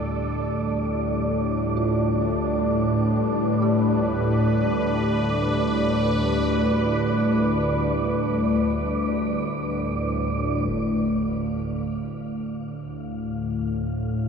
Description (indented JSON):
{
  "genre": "dark ambient drone",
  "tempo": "free time",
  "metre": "none",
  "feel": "none",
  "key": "unclear",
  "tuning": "A4 = 441 Hz",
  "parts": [
    { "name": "sweeping resonant pad", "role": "sustained chords", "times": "0.0-10.7 s", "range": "G3 to B4", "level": "-29 LUFS", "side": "equal", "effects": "chorus, shimmer reverb" },
    { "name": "dark detuned synth bell", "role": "arpeggios", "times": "0.0-10.7 s", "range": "D4 to G4", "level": "-36 LUFS", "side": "right 3 dB", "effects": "none" },
    { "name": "bowed-like drone", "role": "drone", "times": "0.0-14.3 s", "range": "D2 to A2", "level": "-23 LUFS", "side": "left 1 dB", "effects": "built-in reverb" },
    { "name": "wind-like tuned noise texture", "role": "texture", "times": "0.0-14.3 s", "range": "D5 to F5", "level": "-30 LUFS", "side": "right 4 dB", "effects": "built-in reverb, shimmer reverb" },
    { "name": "concert bass drum", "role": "percussion", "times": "10.7-10.9 s", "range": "none", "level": "-42 LUFS", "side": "equal", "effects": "low-pass filter on kick" }
  ],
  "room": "wet huge ambient reverb, RT60 7.7 s",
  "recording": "none",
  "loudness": "-21 LUFS",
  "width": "side -6 dB against mid",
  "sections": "0.0-10.7 A section; 10.7-14.3 B section",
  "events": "fade-in on analog synth pad 0.0-10.7; filter sweep on synth drone 10.7-14.3",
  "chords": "0.0 G; 10.7 Dm"
}